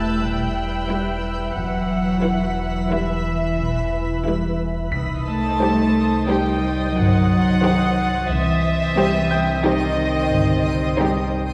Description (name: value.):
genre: cinematic, suspense film score.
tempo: 89 BPM.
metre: 5/4.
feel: straight.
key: unclear.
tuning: A4 = 440 Hz.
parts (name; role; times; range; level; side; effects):
warm chamber violin section; melody; 0.0-11.3 s; Eb5 to A5; -29 LUFS; equal; none.
warm chamber violin section; second line; 0.0-11.5 s; E4 to C5; -30 LUFS; equal; none.
warm chamber viola section; accompaniment; 0.0-11.5 s; Eb3 to E4; -29 LUFS; equal; none.
dark French horn section; sustained chords; 0.0-11.5 s; Eb3 to E4; -31 LUFS; equal; none.
twinkling granular texture; sustained chords; 0.0-11.5 s; B4 to Eb6; -33 LUFS; equal; built-in reverb.
warm chamber cello section; bass; 0.0-11.3 s; Eb3 to A3; -25 LUFS; equal; none.
warm sub bass; drone; 0.0-11.5 s; E1 to C2; -29 LUFS; equal; none.
bright grand piano; texture; 0.0-11.5 s; G5 to B6; -34 LUFS; equal; none.
warm chamber violin section; texture; 0.0-11.3 s; B5 to A6; -35 LUFS; equal; none.
dark chamber double bass section; bass; 0.2-10.9 s; G1 to E2; -28 LUFS; equal; none.
room: wet scoring stage reverb, RT60 1.5 s.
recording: heard from further back in the room.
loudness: -20 LUFS.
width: mono.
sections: 0.0-11.5 A section.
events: none.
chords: 0.0 Em; 4.9 Cm.